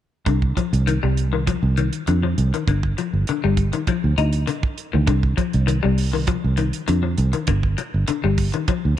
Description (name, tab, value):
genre	afrobeat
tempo	100 BPM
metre	4/4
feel	straight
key	C minor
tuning	A4 = 440 Hz
part	semi-hollow electric guitar	arpeggios	0.3-8.9 s	D3 to Eb4	-24 LUFS	left 8 dB	wide subtle chorus
part	fingered electric bass	bass	0.3-9.0 s	G1 to F2	-19 LUFS	right 1 dB	none
part	tight funk drum kit	drums	0.3-8.8 s	hi-hat, kick drum	-24 LUFS	right 3 dB	none
room	light reverb, small room ambience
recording	1960s-style stereo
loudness	-18 LUFS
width	side -11 dB against mid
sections	0.3-9.0 A section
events	none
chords	0.3 Cmadd9; 2.7 G5; 5.1 Cmadd9; 7.5 G7(no3)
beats	| 0.27 0.87 1.47 2.07 | 2.67 3.27 3.88 4.48 | 5.08 5.68 6.28 6.88 | 7.49 8.09 8.69